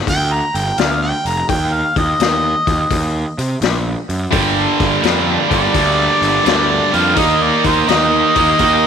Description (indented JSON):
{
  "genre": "blues rock power trio and southern rock",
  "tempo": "84 BPM",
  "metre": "4/4",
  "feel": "swing 67% on 8ths",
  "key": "G minor",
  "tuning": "A4 = 441 Hz",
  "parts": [
    { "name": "warm harmonica", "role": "melody", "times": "0.1-8.9 s", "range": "C5 to Bb5", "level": "-17 LUFS", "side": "equal", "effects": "overdrive" },
    { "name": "fuzz picked electric bass", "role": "bass", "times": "0.1-8.9 s", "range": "F1 to C3", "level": "-19 LUFS", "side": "right 1 dB", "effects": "overdrive" },
    { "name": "raw garage drum kit", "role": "drums", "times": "0.1-8.8 s", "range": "hi-hat, kick drum, snare drum", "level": "-20 LUFS", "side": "left 5 dB", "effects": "none" },
    { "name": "overdriven tonewheel organ", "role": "sustained chords", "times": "4.3-8.9 s", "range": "Bb3 to Eb5", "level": "-25 LUFS", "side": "right 8 dB", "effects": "none" },
    { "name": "tight distorted guitar", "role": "riff", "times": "4.3-8.9 s", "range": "G2 to Eb4", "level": "-15 LUFS", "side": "right 2 dB", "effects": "distortion" }
  ],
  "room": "moderate echo chamber reverb, RT60 2.2 s",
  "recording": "1960s-style stereo",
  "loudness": "-13 LUFS",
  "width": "side -7 dB against mid",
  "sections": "0.0-8.9 A section",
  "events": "none",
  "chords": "0.0 G5; 1.5 Eb5; 4.3 Gm; 7.2 Eb"
}